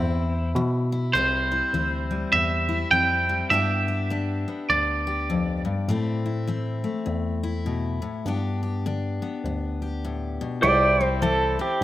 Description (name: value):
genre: honky-tonk and classic country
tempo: 101 BPM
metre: 4/4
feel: swing 61% on 8ths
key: C major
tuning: A4 = 440 Hz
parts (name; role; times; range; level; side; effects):
- pedal steel guitar; melody; 0.0-0.5, 10.6-11.8 s; E4 to D5; -22 LUFS; right 2 dB; none
- picked steel-string acoustic guitar; accompaniment; 0.0-11.8 s; E2 to G4; -29 LUFS; left 4 dB; none
- warm upright piano; accompaniment; 0.0-1.1, 10.6-11.8 s; E4 to C5; -35 LUFS; right 4 dB; none
- pedal steel guitar; sustained chords; 0.0-1.1, 10.6-11.8 s; C5 to G5; -30 LUFS; equal; wide subtle chorus
- bell-like tine electric piano; bass; 0.0-11.8 s; C2 to B2; -27 LUFS; equal; fast stereo tremolo
- twangy electric guitar; second line; 1.1-5.6 s; C5 to G5; -22 LUFS; right 2 dB; tape echo
room: light reverb, small room ambience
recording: rough home demo mix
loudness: -22 LUFS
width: side -14 dB against mid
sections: 0.0-1.1 A section; 1.1-10.6 B section; 10.6-11.8 C section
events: clean electric guitar solo 1.1-10.6; pedal steel guitar solo 10.6-11.8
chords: 0.0 C; 3.5 G; 5.9 Am; 8.3 G; 10.6 C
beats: 0.54 | 1.14 1.73 2.32 2.91 | 3.51 4.10 4.69 5.29 | 5.88 6.47 7.07 7.66 | 8.26 8.85 9.44 10.03 | 10.62 11.22 11.81